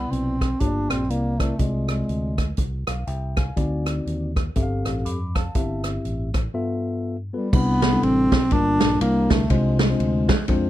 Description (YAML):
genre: uptempo gospel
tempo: 121 BPM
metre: 4/4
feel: swing 60% on 8ths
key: C major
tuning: A4 = 443 Hz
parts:
  - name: warm bass clarinet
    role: melody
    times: 0.0-2.5, 7.3-10.5 s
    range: G3 to D4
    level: -23 LUFS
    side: equal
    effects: none
  - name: mellow tine electric piano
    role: accompaniment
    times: 0.0-10.7 s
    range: G2 to D6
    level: -25 LUFS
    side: left 2 dB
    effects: none
  - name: fingered electric bass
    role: bass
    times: 0.0-10.7 s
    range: G1 to F2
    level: -26 LUFS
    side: equal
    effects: none
  - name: swinging big-band drum kit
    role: drums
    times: 0.1-10.6 s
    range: crash cymbal, hi-hat, kick drum, ride cymbal, rim click, snare drum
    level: -23 LUFS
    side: right 1 dB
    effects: none
room: little or no reverb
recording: none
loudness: -20 LUFS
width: side -13 dB against mid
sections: 0.0-7.5 A section; 7.5-10.7 B section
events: tine electric piano fill 2.6-3.6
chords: 0.0 Cmaj9; 0.6 Gm7; 1.1 C9; 1.6 Fm6/C; 3.6 D7b9; 4.6 G9sus4; 5.6 C/G; 6.5 G13; 7.5 Cmaj9; 8.5 Gm7; 9.0 C9; 9.5 Fm6/C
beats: 0.12 0.61 1.10 | 1.59 2.09 2.58 3.08 | 3.57 4.07 4.56 5.06 | 5.55 6.05 6.54 7.04 | 7.53 8.02 8.52 9.01 | 9.50 10.00 10.49